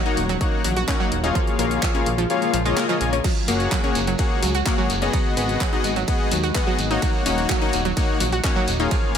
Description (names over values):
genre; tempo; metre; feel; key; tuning
progressive house; 127 BPM; 4/4; straight; unclear; A4 = 439 Hz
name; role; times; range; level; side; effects
shimmering ambient pad; sustained chords; 0.0-9.2 s; C#3 to F#4; -30 LUFS; equal; chorus, built-in reverb, sidechain pumping
soft supersaw; stabs; 0.0-9.2 s; A#3 to G#5; -24 LUFS; left 4 dB; sidechain pumping, ping-pong delay
analog pluck; arpeggios; 0.1-9.2 s; E#3 to F#4; -26 LUFS; right 1 dB; chorus, sidechain pumping, ping-pong delay
deep house drum kit; drums; 0.1-9.2 s; crash cymbal, handclaps, hi-hat, ride cymbal; -30 LUFS; equal; overdrive
fat analog bass; bass; 0.2-9.2 s; D#1 to D#2; -25 LUFS; right 1 dB; sidechain pumping
electronic kick drum; drums; 0.4-9.0 s; none; -23 LUFS; right 1 dB; overdrive
shekere; percussion; 3.2-9.2 s; none; -33 LUFS; right 4 dB; none
room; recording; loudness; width
light reverb, digital ambience; none; -19 LUFS; side -8 dB against mid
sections
0.0-9.2 A section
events
kick drops out 2.3-3.2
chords
0.0 D#m7; 1.4 A#m7; 3.2 F#add9; 5.1 G#m7; 7.0 D#m7